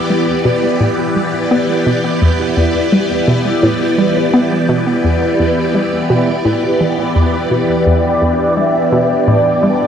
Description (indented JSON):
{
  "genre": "ambient, sequencer-driven space music",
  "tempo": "85 BPM",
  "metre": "4/4",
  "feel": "straight",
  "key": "E minor",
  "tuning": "A4 = 443 Hz",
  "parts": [
    { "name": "phased string machine", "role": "sustained chords", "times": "0.0-9.9 s", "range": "E3 to D5", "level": "-14 LUFS", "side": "equal", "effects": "ensemble chorus, phaser" },
    { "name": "bubbling stepped-filter texture", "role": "texture", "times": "0.0-9.9 s", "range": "D4 to D5", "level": "-26 LUFS", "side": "equal", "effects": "chorus, built-in reverb" },
    { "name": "hollow square pluck", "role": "riff", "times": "0.1-9.9 s", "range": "E2 to B3", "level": "-16 LUFS", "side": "equal", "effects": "chorus, analog delay" },
    { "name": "mellow horn-like synth lead", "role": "melody", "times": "7.9-9.9 s", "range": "D5 to E5", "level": "-16 LUFS", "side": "equal", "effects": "ensemble chorus" }
  ],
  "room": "wet huge ambient reverb, RT60 8.7 s",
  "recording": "none",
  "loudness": "-11 LUFS",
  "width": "side -8 dB against mid",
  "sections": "0.0-9.9 A section",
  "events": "filter sweep on synth arpeggio sound 0.0-9.9",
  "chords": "0.0 Em7"
}